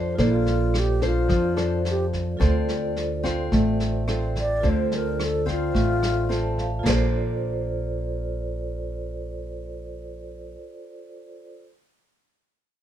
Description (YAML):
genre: bossa nova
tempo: 108 BPM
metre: 4/4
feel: straight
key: Bb major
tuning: A4 = 440 Hz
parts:
  - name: nylon-string guitar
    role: accompaniment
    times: 0.0-10.6 s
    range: D3 to C5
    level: -27 LUFS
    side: left 2 dB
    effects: none
  - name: vibraphone with medium hard mallets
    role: accompaniment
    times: 0.0-11.6 s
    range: F4 to A5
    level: -32 LUFS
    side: right 2 dB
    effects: none
  - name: upright bass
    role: bass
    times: 0.0-10.5 s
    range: A1 to F2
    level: -26 LUFS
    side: right 1 dB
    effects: none
  - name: mellow alto flute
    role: melody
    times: 0.2-6.7 s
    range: F4 to D5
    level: -26 LUFS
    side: left 1 dB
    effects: none
  - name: vintage brush drum kit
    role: drums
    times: 0.2-7.0 s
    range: china cymbal, kick drum, rim click, snare drum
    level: -30 LUFS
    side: equal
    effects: none
room: light reverb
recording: minimal, uncompressed stereo recording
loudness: -22 LUFS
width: side -10 dB against mid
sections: 0.0-6.9 A section; 6.9-9.1 B section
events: alto flute solo 0.0-6.9; vibraphone fill 6.0-6.9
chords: 0.0 Bbmaj9; 2.4 Dm7; 6.9 Bbmaj9